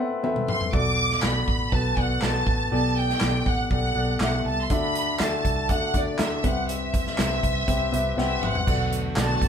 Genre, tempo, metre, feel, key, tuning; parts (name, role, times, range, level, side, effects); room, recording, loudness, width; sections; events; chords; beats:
piano-driven pop; 121 BPM; 4/4; straight; A4 = 440 Hz
clear grand piano; accompaniment; 0.0-9.5 s; A2 to F#5; -27 LUFS; left 2 dB
modern studio drum kit; drums; 0.2-9.5 s; crash cymbal, handclaps, hi-hat, kick drum, snare drum, toms; -27 LUFS; right 1 dB
warm studio violin section; melody; 0.5-9.5 s; D5 to D6; -27 LUFS; right 1 dB
vintage muted fingered electric bass; bass; 0.7-9.5 s; A1 to D2; -28 LUFS; right 1 dB
warm studio string section; sustained chords; 8.7-9.5 s; D3 to F#4; -32 LUFS; right 2 dB
wet studio ambience, RT60 0.5 s; band playing live in one room; -21 LUFS; side -8 dB against mid
0.0-8.7 A section
drum fill 0.2-0.7, 8.2-8.7
0.0 Amadd9; 0.7 Bm7; 2.7 Gadd9; 4.7 Dadd9; 6.4 Cmaj7; 8.7 Bm7
0.24 | 0.74 1.23 1.73 2.22 | 2.72 3.22 3.71 4.21 | 4.70 5.20 5.70 6.19 | 6.69 7.18 7.68 8.17 | 8.67 9.17